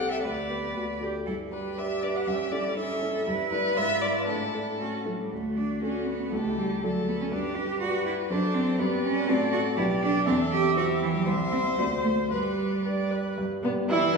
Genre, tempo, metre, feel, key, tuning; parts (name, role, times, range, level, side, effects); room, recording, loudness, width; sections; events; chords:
quick classical-period movement for piano quartet; 120 BPM; 2/4; rubato; G major, D major from 3.3 s, G major from 9.3 s; A4 = 437 Hz
rich violin; melody; 0.0-14.2 s; B3 to F#5; -32 LUFS; left 3 dB
rich cello; second line; 0.0-14.2 s; B2 to B4; -28 LUFS; right 2 dB
warm concert grand piano; accompaniment; 0.0-14.2 s; B1 to D5; -30 LUFS; equal
warm viola; accompaniment; 0.0-14.2 s; B3 to E5; -34 LUFS; right 2 dB
wet concert hall reverb, RT60 1.7 s; heard from further back in the room, small room ambience; -25 LUFS; side -4 dB against mid
0.0-5.3 A section; 5.3-13.4 B section
0.2 G/D; 0.8 D; 1.3 G; 2.3 A7/G; 3.3 Em7/G; 3.8 G#dim7; 4.3 Asus4; 4.8 A; 5.3 D; 6.3 A7/C#; 6.8 D; 7.3 G; 8.3 D7/F#; 8.8 G; 9.3 D7/A; 9.8 G/B; 10.3 C/E; 11.3 C; 11.8 D7; 12.3 G